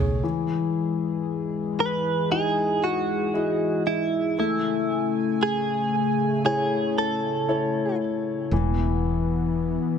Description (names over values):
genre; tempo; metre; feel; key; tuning
pop; 58 BPM; 4/4; straight; E major; A4 = 438 Hz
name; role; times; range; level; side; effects
warm concert grand piano; accompaniment; 0.0-10.0 s; E3 to D#5; -27 LUFS; left 6 dB; none
chorused pulse-width pad; sustained chords; 0.0-10.0 s; C#3 to G#5; -29 LUFS; equal; none
woody fretless electric bass; bass; 0.0-0.2, 8.5-9.8 s; E1 to B1; -25 LUFS; right 1 dB; none
direct-recorded clean electric guitar; melody; 1.8-8.0 s; E4 to B4; -25 LUFS; right 2 dB; analog chorus
room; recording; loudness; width
light reverb, small room ambience; none; -22 LUFS; side -7 dB against mid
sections
0.2-10.0 A section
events
none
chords
0.2 Emaj7; 4.4 Amaj7; 8.5 E5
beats
| 0.24 1.27 2.31 3.34 | 4.38 5.41 6.45 7.48 | 8.51 9.55